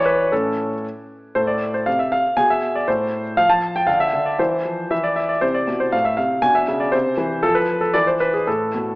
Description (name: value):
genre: classical-period piano sonatina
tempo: 118 BPM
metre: 2/4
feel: rubato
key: A minor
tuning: A4 = 439 Hz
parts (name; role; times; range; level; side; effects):
- clear grand piano; solo; 0.0-9.0 s; A2 to A5; -17 LUFS; equal; none
room: moderate recital hall reverb, RT60 1.6 s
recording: AM radio sound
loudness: -17 LUFS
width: side -22 dB against mid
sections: 0.0-1.4 A section; 1.4-9.0 B section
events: none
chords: 0.3 A; 1.4 Am; 2.4 Bm6; 2.9 N.C.; 4.4 Cadd11/E; 4.9 N.C.; 5.4 Am; 6.4 Bm69; 6.9 C; 7.4 N.C.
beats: | 0.32 0.84 | 1.36 1.87 | 2.38 2.87 | 3.37 3.88 | 4.39 4.92 | 5.43 5.94 | 6.44 6.94 | 7.44 7.94 | 8.47